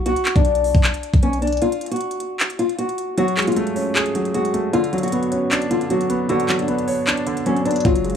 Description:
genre	hip hop, trap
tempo	154 BPM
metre	4/4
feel	half-time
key	unclear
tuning	A4 = 440 Hz
part	nylon-string guitar	melody	0.0-8.1 s	C#4 to F#4	-21 LUFS	left 2 dB	low-pass filter, tape echo
part	warm 808-style bass	bass	0.0-1.6, 7.8-8.2 s	F#1 to B1	-21 LUFS	equal	none
part	trap drum kit	drums	0.1-8.1 s	handclaps, hi-hat, kick drum	-22 LUFS	equal	none
part	warm concert grand piano	accompaniment	3.2-8.2 s	D3 to C#5	-20 LUFS	right 1 dB	low-pass filter
room	little or no reverb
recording	dry, gritty hardware recording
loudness	-17 LUFS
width	side -8 dB against mid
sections	0.0-8.2 A section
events	break 0.0-7.9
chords	0.0 Bm; 1.6 F#madd9; 4.7 Bmadd9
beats	| 0.06 0.45 0.84 1.23 | 1.62 2.01 2.40 2.79 | 3.18 3.56 3.96 4.34 | 4.73 5.12 5.51 5.90 | 6.29 6.68 7.07 7.46 | 7.85

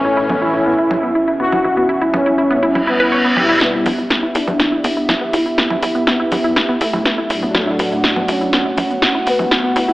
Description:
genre	melodic techno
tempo	122 BPM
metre	4/4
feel	straight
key	E dorian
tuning	A4 = 442 Hz
part	analog synth brass	melody	0.0-9.9 s	A3 to F#4	-19 LUFS	equal	chorus, dub echo
part	dark analog pad	sustained chords	0.0-9.9 s	G3 to F#5	-21 LUFS	right 1 dB	chorus
part	wide unison pluck	arpeggios	0.0-9.9 s	B3 to C#5	-21 LUFS	equal	tape echo
part	brassy analog pad	stabs	0.0-8.6 s	G2 to E4	-21 LUFS	left 1 dB	chorus, tape echo
part	tight sequencer bass	bass	0.0-9.9 s	A1 to E2	-22 LUFS	equal	high-pass filter
part	bowed-like drone	drone	0.2-3.7 s	E2 to B2	-37 LUFS	equal	none
part	deep house drum kit	drums	0.3-9.9 s	congas, hi-hat, shaker, snare drum	-18 LUFS	equal	overdrive
part	reverse cymbal	sound effects	2.8-3.6 s	none	-18 LUFS	equal	none
room	moderate lush hall reverb, RT60 2.1 s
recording	AM radio sound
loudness	-13 LUFS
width	side -18 dB against mid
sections	0.0-3.6 A section; 3.6-9.9 B section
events	filter sweep on synth pluck 0.0-3.6; reverse cymbal 2.8-3.6; build-up 3.6-9.9; drum fill 3.6-9.9; filter sweep on analog polysynth 3.6-9.9; filter sweep on analog synth pad 3.6-9.9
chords	0.0 A; 3.6 Em; 7.5 D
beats	0.17 0.66 1.15 | 1.65 2.14 2.63 3.12 | 3.61 4.10 4.60 5.09 | 5.58 6.07 6.56 7.05 | 7.55 8.04 8.53 9.02 | 9.51

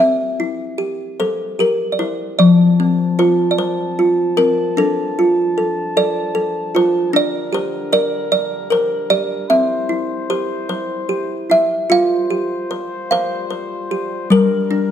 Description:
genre	children's music, lullaby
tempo	50 BPM (dotted quarters)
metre	6/8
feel	straight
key	F major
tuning	A4 = 440 Hz
part	kalimba	melody	0.0-14.9 s	F3 to F5	-15 LUFS	equal	none
part	warm brass ensemble	sustained chords	2.4-14.9 s	D3 to A5	-26 LUFS	left 2 dB	none
room	light reverb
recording	dark, warm production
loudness	-15 LUFS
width	side -9 dB against mid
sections	0.0-2.4 A section; 2.4-11.9 A section; 11.9-14.9 B section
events	none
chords	0.0 C; 2.4 F; 4.8 Dm; 7.1 Gm/D; 9.5 C; 11.9 Fsus2; 14.3 Gm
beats	| 0.00 1.19 | 2.39 3.59 | 4.78 5.97 | 7.15 8.32 | 9.50 10.69 | 11.89 13.10 | 14.29

